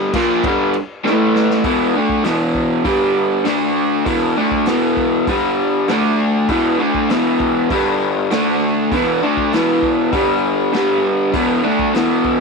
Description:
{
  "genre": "garage rock duo or trio",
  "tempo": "99 BPM",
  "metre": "4/4",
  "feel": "straight",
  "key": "unclear",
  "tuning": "A4 = 439 Hz",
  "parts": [
    { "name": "raw garage guitar", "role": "riff", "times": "0.0-12.4 s", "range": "E2 to D4", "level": "-14 LUFS", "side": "equal", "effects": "overdrive" },
    { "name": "vintage drum kit", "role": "drums", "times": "0.1-12.4 s", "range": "crash cymbal, hi-hat, kick drum, snare drum", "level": "-27 LUFS", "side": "left 2 dB", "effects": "none" }
  ],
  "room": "light reverb",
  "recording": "1960s-style stereo",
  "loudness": "-14 LUFS",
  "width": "side -4 dB against mid",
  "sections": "0.0-1.7 A section; 1.7-12.4 B section",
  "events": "drum fill 1.0-1.7",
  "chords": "0.1 Gm7; 1.0 A5; 1.7 E5; 2.9 G5; 3.5 D5; 4.1 E5; 5.3 G5; 5.9 D5; 6.5 E5; 7.7 G5; 8.3 D5; 8.9 E5; 10.1 G5; 11.3 E5"
}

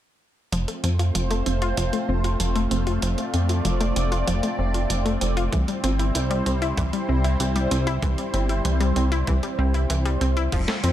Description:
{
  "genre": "synthwave",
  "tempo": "96 BPM",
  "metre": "4/4",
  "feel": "straight",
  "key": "F major",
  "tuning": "A4 = 442 Hz",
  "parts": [
    { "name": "lush unison pad", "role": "sustained chords", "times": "0.7-10.9 s", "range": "G3 to D5", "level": "-27 LUFS", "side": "equal", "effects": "chorus, phaser, sidechain pumping" },
    { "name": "analog pluck", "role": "arpeggios", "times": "0.5-10.9 s", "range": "E3 to F4", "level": "-28 LUFS", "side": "left 2 dB", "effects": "chorus, tape echo" },
    { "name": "chorused synth bass", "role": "bass", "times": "0.5-10.9 s", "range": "F1 to F2", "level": "-23 LUFS", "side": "equal", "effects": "none" },
    { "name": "clean 12-bit digital drum machine", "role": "drums", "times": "0.5-10.9 s", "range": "crash cymbal, hi-hat, snare drum", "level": "-32 LUFS", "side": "right 2 dB", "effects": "gated reverb" },
    { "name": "electronic kick drum", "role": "drums", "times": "5.5-10.7 s", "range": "none", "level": "-27 LUFS", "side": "equal", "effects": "none" }
  ],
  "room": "light reverb",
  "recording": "none",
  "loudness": "-21 LUFS",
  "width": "side -12 dB against mid",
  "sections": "0.5-10.5 A section",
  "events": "filter sweep on analog synth bass 0.5-10.5; filter sweep on synth arpeggio sound 0.5-10.5",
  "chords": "0.5 F; 5.5 C"
}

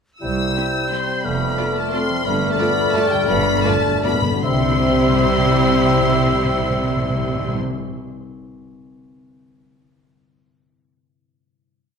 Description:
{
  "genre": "classical, orchestral ballroom waltz",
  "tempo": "142-192 BPM",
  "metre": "3/4",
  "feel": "rubato",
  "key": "C major",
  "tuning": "A4 = 437 Hz",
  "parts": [
    { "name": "rich studio violin section", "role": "melody", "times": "0.2-7.6 s", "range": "G5 to E6", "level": "-25 LUFS", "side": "left 4 dB", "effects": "none" },
    { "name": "mellow clarinet", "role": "second line", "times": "0.2-7.5 s", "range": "C5 to E5", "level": "-27 LUFS", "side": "left 1 dB", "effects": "none" },
    { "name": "mellow hollow silver concert flute", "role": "second line", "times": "0.2-7.5 s", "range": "E6 to G6", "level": "-26 LUFS", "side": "equal", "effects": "none" },
    { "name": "warm bassoon", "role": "accompaniment", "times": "0.2-7.6 s", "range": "G3 to A3", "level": "-26 LUFS", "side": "right 1 dB", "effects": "none" },
    { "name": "mellow French horn section", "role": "sustained chords", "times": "0.2-7.6 s", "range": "G3 to E4", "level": "-24 LUFS", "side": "left 2 dB", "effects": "none" },
    { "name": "concert harp", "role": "arpeggios", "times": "0.2-8.3 s", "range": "F2 to E5", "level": "-28 LUFS", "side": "left 8 dB", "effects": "none" },
    { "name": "clear studio cello section", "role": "bass", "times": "0.2-7.5 s", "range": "C2 to C3", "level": "-27 LUFS", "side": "right 4 dB", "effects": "none" },
    { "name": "rich studio double bass section", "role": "bass", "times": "0.2-7.6 s", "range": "F1 to C2", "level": "-27 LUFS", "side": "right 5 dB", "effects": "none" },
    { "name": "rich studio violin section", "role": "second line", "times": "0.6-7.5 s", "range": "G4 to E5", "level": "-30 LUFS", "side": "left 1 dB", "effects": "none" },
    { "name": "clear studio viola section", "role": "accompaniment", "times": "0.6-7.6 s", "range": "A3 to F4", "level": "-28 LUFS", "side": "right 1 dB", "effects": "none" },
    { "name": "timpani", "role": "percussion", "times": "2.3-7.8 s", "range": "G2 to C3", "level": "-24 LUFS", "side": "left 1 dB", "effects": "none" }
  ],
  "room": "wet scoring stage reverb, RT60 1.6 s",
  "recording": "none",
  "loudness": "-16 LUFS",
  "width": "side -6 dB against mid",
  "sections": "0.2-4.4 A section; 4.4-6.8 final chord",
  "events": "slowing down 1.8-4.4; timpani fill 2.3-4.4",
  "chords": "0.2 C; 1.3 Dm/F; 2.3 G9; 4.4 C"
}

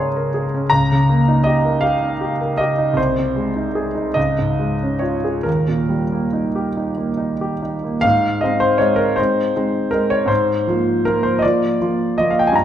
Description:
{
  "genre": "classical, romantic nocturne for solo piano",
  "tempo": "45-55 BPM (dotted quarters)",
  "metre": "6/8",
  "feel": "rubato",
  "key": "Ab major",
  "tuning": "A4 = 440 Hz",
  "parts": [
    { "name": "warm concert grand piano", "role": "solo", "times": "0.0-12.6 s", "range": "C2 to C6", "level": "-16 LUFS", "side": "equal", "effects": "none" }
  ],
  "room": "wet scoring stage reverb, RT60 1.6 s",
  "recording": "none",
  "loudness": "-16 LUFS",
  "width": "side -10 dB against mid",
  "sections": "0.0-8.0 A section; 8.0-12.6 B section",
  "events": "none",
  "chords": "0.0 Bbm7/Db; 0.7 Eb7/Db; 3.0 Ab/C; 4.2 Db; 5.5 Eb; 8.0 Ab; 10.3 Bb7/Ab"
}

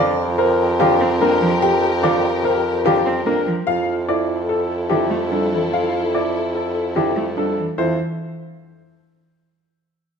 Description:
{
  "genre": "classical, minimalist pattern music",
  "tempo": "146 BPM",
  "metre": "5/4",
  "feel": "straight",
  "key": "F major",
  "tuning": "A4 = 440 Hz",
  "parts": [
    { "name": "bright grand piano", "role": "melody", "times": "0.0-8.0 s", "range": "G4 to G5", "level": "-22 LUFS", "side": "left 6 dB", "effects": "none" },
    { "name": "rich cello", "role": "accompaniment", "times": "0.0-8.0 s", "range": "D3 to C4", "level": "-25 LUFS", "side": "right 2 dB", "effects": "none" },
    { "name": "warm studio violin section", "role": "sustained chords", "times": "0.0-7.5 s", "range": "E4 to Bb4", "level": "-25 LUFS", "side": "left 6 dB", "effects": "none" },
    { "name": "warm concert grand piano", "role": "arpeggios", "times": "0.0-8.0 s", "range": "D4 to C5", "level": "-24 LUFS", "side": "right 9 dB", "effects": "none" },
    { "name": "warm bassoon", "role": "bass", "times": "0.0-8.0 s", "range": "F2", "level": "-22 LUFS", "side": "right 2 dB", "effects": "none" }
  ],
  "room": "moderate scoring stage reverb, RT60 1.7 s",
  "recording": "none",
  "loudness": "-16 LUFS",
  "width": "side -6 dB against mid",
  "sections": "0.0-7.8 A section; 7.8-9.8 B section",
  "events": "none",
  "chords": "0.0 Gm7/F; 3.7 Fmaj7; 7.8 F5"
}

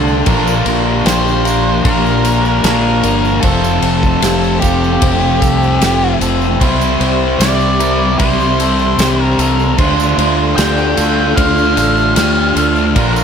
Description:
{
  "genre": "rock, shoegaze and dream pop",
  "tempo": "76 BPM",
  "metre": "4/4",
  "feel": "straight",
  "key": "unclear",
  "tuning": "A4 = 440 Hz",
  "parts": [
    { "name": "warbly tape-like pad", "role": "sustained chords", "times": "0.0-13.2 s", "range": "F4 to C6", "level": "-22 LUFS", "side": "equal", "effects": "chorus, built-in reverb" },
    { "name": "electric guitar through a small old amp", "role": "arpeggios", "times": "0.0-13.2 s", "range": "G4 to A5", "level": "-23 LUFS", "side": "left 1 dB", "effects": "wide subtle chorus, digital delay" },
    { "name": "overdriven electric guitar", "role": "riff", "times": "0.0-13.2 s", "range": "F2 to F4", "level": "-18 LUFS", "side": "right 12 dB", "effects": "reverse reverb" },
    { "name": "thick fuzz guitar", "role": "riff", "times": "0.0-13.2 s", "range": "F2 to D4", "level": "-17 LUFS", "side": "left 11 dB", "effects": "distortion, lush chorus" },
    { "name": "growling fingered electric bass", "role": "bass", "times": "0.0-13.2 s", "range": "F1 to D2", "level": "-18 LUFS", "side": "equal", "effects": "overdrive" },
    { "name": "tambourine", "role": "percussion", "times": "0.1-13.2 s", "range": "none", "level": "-29 LUFS", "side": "right 12 dB", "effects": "none" },
    { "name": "loose indie drum kit", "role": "drums", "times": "0.3-13.1 s", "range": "kick drum, ride cymbal, snare drum", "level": "-18 LUFS", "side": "left 1 dB", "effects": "none" },
    { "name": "octave-fuzz lead guitar", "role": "melody", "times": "1.1-12.9 s", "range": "G4 to G5", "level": "-19 LUFS", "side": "equal", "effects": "distortion, digital delay" }
  ],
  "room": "light reverb, small room ambience",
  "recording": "none",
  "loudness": "-10 LUFS",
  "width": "side -7 dB against mid",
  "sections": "0.0-13.2 A section",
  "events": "none",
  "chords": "0.3 Bb6; 3.4 F; 6.6 C; 9.8 Dm7"
}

